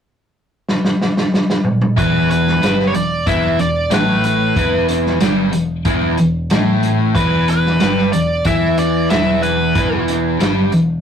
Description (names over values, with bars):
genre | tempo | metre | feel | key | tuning
blues rock power trio and southern rock | 92 BPM | 4/4 | straight | unclear | A4 = 440 Hz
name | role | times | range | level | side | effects
vintage drum kit | drums | 0.7-10.9 s | hi-hat, kick drum, snare drum, toms | -18 LUFS | equal | none
nasal lead guitar with a parked wah | melody | 2.0-10.0 s | B4 to E5 | -18 LUFS | equal | overdrive
biting overdriven guitar | riff | 2.0-11.0 s | E2 to E4 | -16 LUFS | equal | none
picked electric bass | bass | 2.0-11.0 s | E1 to E2 | -23 LUFS | right 1 dB | none
room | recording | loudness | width
moderate booth ambience, RT60 0.2 s | rough rehearsal-room recording, warm saturation | -13 LUFS | side -8 dB against mid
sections
0.0-2.0 A section; 2.0-11.0 B section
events
drum fill 0.7-2.0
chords
0.0 N.C.; 2.0 E5